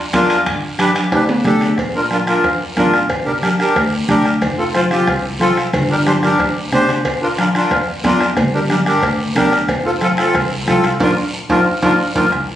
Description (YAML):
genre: latin, cumbia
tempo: 182 BPM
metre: 4/4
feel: straight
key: unclear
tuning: A4 = 440 Hz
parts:
  - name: upright bass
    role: bass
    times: 0.0-12.6 s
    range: F1 to F2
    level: -21 LUFS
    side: equal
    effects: none
  - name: accordion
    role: accompaniment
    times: 0.1-12.3 s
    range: C4 to C5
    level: -16 LUFS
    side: equal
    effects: none
  - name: bombo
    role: percussion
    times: 0.1-12.5 s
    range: none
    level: -23 LUFS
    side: left 1 dB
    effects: none
  - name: congas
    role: percussion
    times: 0.1-12.2 s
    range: none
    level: -22 LUFS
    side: left 1 dB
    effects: none
  - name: guiro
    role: percussion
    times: 0.1-12.6 s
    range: none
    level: -28 LUFS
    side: right 1 dB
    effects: none
  - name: timbales and cowbell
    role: percussion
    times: 0.1-12.2 s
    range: none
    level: -22 LUFS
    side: right 1 dB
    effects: none
room: wet studio reverb, RT60 0.8 s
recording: recorded on a phone in the room, studio reverb, compression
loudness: -13 LUFS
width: side -11 dB against mid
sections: 0.0-1.8 A section; 1.8-12.3 B section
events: drum fill 1.1-1.8, 6.2-7.0; band accent 11.0-12.3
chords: 0.5 G; 1.8 Bb; 3.1 Gm; 4.4 F; 5.7 Gm; 7.0 Bb; 8.4 Gm; 9.7 F; 11.0 Bb